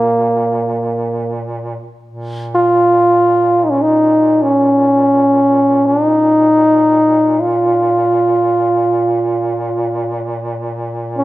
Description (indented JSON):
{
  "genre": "caucasian folk, Caucasian lament",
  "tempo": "free time",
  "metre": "none",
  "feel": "none",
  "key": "Bb minor",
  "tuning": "A4 = 440 Hz",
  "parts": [
    { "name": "clear trombone", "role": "melody", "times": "0.0-11.2 s", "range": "Bb3 to F4", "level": "-11 LUFS", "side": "equal", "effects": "none" },
    { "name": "warm duduk", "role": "drone", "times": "0.0-11.2 s", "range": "Bb2", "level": "-23 LUFS", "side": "right 1 dB", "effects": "none" }
  ],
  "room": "moderate recital hall reverb, RT60 1.6 s",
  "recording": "none",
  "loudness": "-11 LUFS",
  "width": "side -16 dB against mid",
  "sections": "0.0-2.1 A section; 2.1-11.2 A section",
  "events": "none",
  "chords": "none"
}